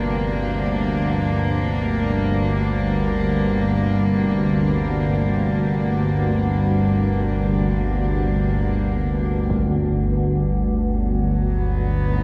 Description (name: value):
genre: dark ambient drone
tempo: free time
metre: none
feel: none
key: unclear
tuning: A4 = 440 Hz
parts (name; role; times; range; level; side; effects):
- warm studio cello section; sustained chords; 0.0-12.2 s; G2 to D#4; -26 LUFS; equal; none
- organ-like drone; drone; 0.0-12.2 s; G1 to D2; -22 LUFS; equal; ensemble chorus, built-in reverb
- impact; percussion; 9.5-9.8 s; none; -34 LUFS; equal; none
room: wet huge ambient reverb, RT60 8.3 s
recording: none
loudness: -21 LUFS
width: mono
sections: 0.0-12.2 A section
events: none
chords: 0.0 Gm; 9.5 B5